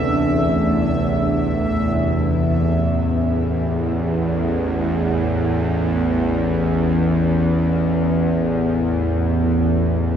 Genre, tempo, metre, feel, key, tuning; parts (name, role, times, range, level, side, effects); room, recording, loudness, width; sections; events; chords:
dark ambient drone; free time; A minor; A4 = 441 Hz
sweeping resonant pad; sustained chords; 0.0-2.8 s; C3 to D4; -23 LUFS; equal; chorus, shimmer reverb
gamelan-type bossed gongs; arpeggios; 0.0-4.4 s; D2 to E4; -34 LUFS; left 1 dB
bowed-like drone; drone; 0.0-10.2 s; A1 to E2; -18 LUFS; equal; built-in reverb
bubbling stepped-filter texture; texture; 0.0-2.8 s; E5; -27 LUFS; right 1 dB; chorus, built-in reverb, shimmer reverb
wet cathedral reverb, RT60 5.5 s; -17 LUFS; side -8 dB against mid
0.0-2.8 A section; 2.8-10.2 B section
0.0 Am; 2.8 A5